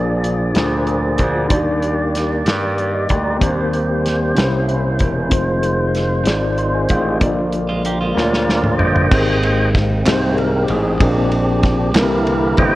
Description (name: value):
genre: slow gospel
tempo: 63 BPM (dotted quarters)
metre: 6/8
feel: straight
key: unclear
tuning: A4 = 440 Hz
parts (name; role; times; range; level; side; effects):
- mellow tine electric piano; accompaniment; 0.0-12.8 s; Ab2 to C6; -20 LUFS; left 1 dB; medium stereo tremolo
- percussive tonewheel organ; sustained chords; 0.0-12.8 s; D3 to G5; -20 LUFS; right 1 dB; slow rotary speaker, overdrive
- gritty slap bass; bass; 0.0-12.8 s; E1 to G2; -20 LUFS; equal; overdrive
- warm soul drum kit; drums; 0.2-12.7 s; crash cymbal, hi-hat, kick drum, ride cymbal, snare drum, toms; -19 LUFS; equal; none
- clean electric guitar; second line; 7.7-8.9 s; Ab3 to G4; -25 LUFS; right 2 dB; lush chorus
- group handclap; percussion; 10.1-12.2 s; none; -27 LUFS; right 3 dB; none
room: light reverb, small room ambience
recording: worn, warbling old tape, cassette tape, warbly pitch drift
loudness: -14 LUFS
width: side -17 dB against mid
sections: 0.0-9.1 A section; 9.1-12.8 B section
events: drum fill 8.2-9.1; tonewheel organ solo 9.1-12.8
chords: 0.0 Bb7; 1.5 Ebmaj7; 3.4 Cm7/Eb; 4.4 C7b9; 5.3 Fm7; 7.2 Bb; 9.1 Abmaj9; 11.0 Bb9; 11.9 C7